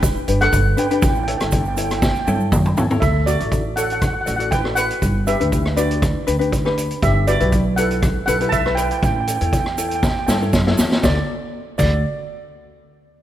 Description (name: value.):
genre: calypso.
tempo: 120 BPM.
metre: 4/4.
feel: straight.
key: D major.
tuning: A4 = 442 Hz.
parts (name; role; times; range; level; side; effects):
steel pan; melody; 0.0-12.0 s; F#4 to A5; -22 LUFS; right 2 dB; slapback echo.
ukulele; accompaniment; 0.0-12.0 s; D4 to D5; -24 LUFS; left 4 dB; none.
upright bass; bass; 0.0-12.0 s; E1 to G2; -21 LUFS; equal; none.
street-band drum kit; drums; 0.0-11.9 s; crash cymbal, hi-hat, kick drum, rim click, snare drum, toms; -21 LUFS; equal; none.
egg shaker; percussion; 0.0-12.0 s; none; -33 LUFS; right 6 dB; none.
room: light reverb.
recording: none.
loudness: -16 LUFS.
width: side -12 dB against mid.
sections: 0.0-3.0 A section; 3.0-11.0 B section; 11.0-13.0 C section.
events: drum fill 2.0-3.0, 10.0-11.0.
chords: 0.0 G; 1.0 A7; 3.0 D6; 5.0 G6; 7.0 Emadd9/G; 9.0 A7; 11.0 D.